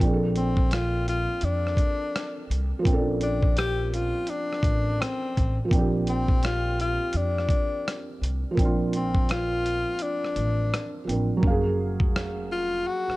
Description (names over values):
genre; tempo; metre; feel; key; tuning
lo-fi hip hop; 84 BPM; 4/4; swing 63% on 16ths; Bb major; A4 = 440 Hz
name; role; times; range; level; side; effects
felt-muted upright piano; accompaniment; 0.0-13.2 s; F3 to F5; -30 LUFS; right 2 dB; cassette tape
upright bass; bass; 0.0-13.1 s; F1 to F2; -28 LUFS; equal; none
dusty soul sampler-style drum kit; drums; 0.0-13.2 s; hi-hat, kick drum, rim click; -25 LUFS; equal; none
breathy tenor saxophone; melody; 0.4-13.2 s; C4 to G4; -28 LUFS; left 2 dB; none
room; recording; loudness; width
light reverb, small room ambience; cassette tape; -23 LUFS; side -19 dB against mid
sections
0.0-11.4 A section; 11.4-13.2 B section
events
break 10.0-11.4; hi-hats muted 11.4-13.2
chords
0.0 Bbmaj9; 11.4 Gbmaj9